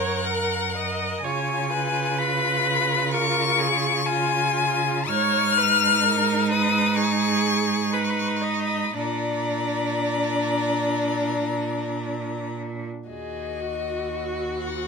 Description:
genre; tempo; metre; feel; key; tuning
classical, slow romantic movement for string quartet; 56-65 BPM; 4/4; rubato; Eb minor from 5.1 s; A4 = 440 Hz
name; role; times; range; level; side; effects
rich violin; melody; 0.0-14.9 s; Eb5 to F6; -24 LUFS; left 7 dB; none
rich violin; second line; 0.0-14.9 s; D4 to A#4; -29 LUFS; left 3 dB; none
rich viola; accompaniment; 0.0-14.9 s; E#4 to D#5; -28 LUFS; right 4 dB; none
clear cello; bass; 0.0-14.9 s; Eb2 to C#3; -28 LUFS; right 6 dB; none
room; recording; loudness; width
light reverb; minimal, uncompressed stereo recording; -21 LUFS; side -4 dB against mid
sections
0.0-13.1 A section; 13.1-14.9 B section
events
none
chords
0.0 F#; 1.2 C#7; 5.1 Abm69; 8.9 Bb; 13.1 Ebm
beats
0.25 | 1.22 2.18 3.11 4.06 | 5.08 6.04 6.97 7.93 | 8.94 9.98 11.02 12.04 | 13.09 14.10

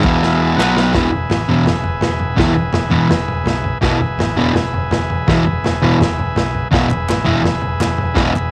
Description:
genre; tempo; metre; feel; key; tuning
garage rock duo or trio; 166 BPM; 4/4; straight; E major; A4 = 439 Hz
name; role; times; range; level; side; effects
combo organ; sustained chords; 0.0-8.5 s; F#4 to F#5; -25 LUFS; equal; cassette tape
fuzz guitar; riff; 0.0-8.3 s; E2 to B3; -17 LUFS; equal; distortion, cassette tape
growling picked electric bass; bass; 0.0-8.5 s; E1 to B1; -26 LUFS; equal; overdrive
crunchy breakbeat drum kit; drums; 0.0-8.4 s; kick drum, ride cymbal, snare drum, toms; -21 LUFS; equal; cassette tape
group handclap; percussion; 0.6-0.7, 6.9-8.4 s; none; -31 LUFS; equal; none
room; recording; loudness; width
little or no reverb; home recording on cassette; -16 LUFS; mono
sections
0.9-8.5 A section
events
drum fill 0.2-0.9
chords
0.0 E; 0.6 B5; 0.9 E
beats
0.22 0.58 | 0.94 1.31 1.67 2.03 | 2.39 2.75 3.11 3.48 | 3.84 4.20 4.56 4.92 | 5.28 5.65 6.01 6.37 | 6.73 7.09 7.46 7.82 | 8.18

